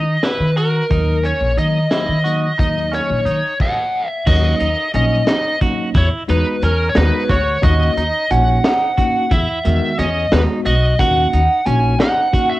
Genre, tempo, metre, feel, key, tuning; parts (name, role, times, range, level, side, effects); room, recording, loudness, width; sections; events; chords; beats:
progressive instrumental, band music in an uneven meter; 178 BPM (eighths); 5/8; straight; Eb phrygian; A4 = 440 Hz
biting lead guitar; melody; 0.0-12.6 s; Bb4 to Ab5; -19 LUFS; equal; overdrive, cassette tape, analog delay
bright tine electric piano; accompaniment; 0.0-12.6 s; Eb3 to Gb4; -23 LUFS; left 1 dB; medium stereo tremolo, cassette tape
clean electric guitar; arpeggios; 0.0-12.6 s; D#3 to Gb4; -25 LUFS; right 3 dB; phaser, cassette tape
upright bass; bass; 0.0-11.9 s; Bb1 to Eb3; -17 LUFS; equal
crunchy breakbeat drum kit; drums; 0.2-12.5 s; crash cymbal, hi-hat, kick drum, snare drum; -19 LUFS; equal; cassette tape
light reverb; home recording on cassette; -14 LUFS; side -17 dB against mid
0.0-4.3 A section; 4.3-12.6 B section
0.0 Dbmadd9 (rootless); 0.9 Ebm; 4.3 Ebm7; 6.0 Emaj7; 7.6 Ebm7; 9.3 Emaj7; 11.0 Ebm7
0.23 0.57 | 0.91 1.24 1.58 1.92 2.25 | 2.59 2.93 3.26 3.60 3.94 | 4.27 4.61 4.94 5.28 5.62 | 5.95 6.29 6.63 6.96 7.30 | 7.63 7.97 8.31 8.64 8.98 | 9.31 9.65 9.99 10.32 10.66 | 10.99 11.33 11.66 12.00 12.34